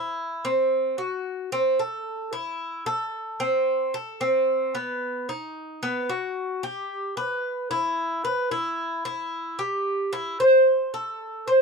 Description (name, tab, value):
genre	latin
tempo	112 BPM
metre	4/4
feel	straight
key	unclear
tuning	A4 = 442 Hz
part	Cuban tres	solo	0.0-11.6 s	B3 to C5	-23 LUFS	equal	none
room	light reverb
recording	dry, close 1970s-style studio recording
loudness	-23 LUFS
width	side -4 dB against mid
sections	0.0-11.6 A section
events	none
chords	none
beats	| 0.45 0.99 1.53 2.07 | 2.60 3.14 3.68 4.22 | 4.75 5.29 5.83 6.37 | 6.90 7.44 7.98 8.52 | 9.05 9.59 10.13 10.67 | 11.20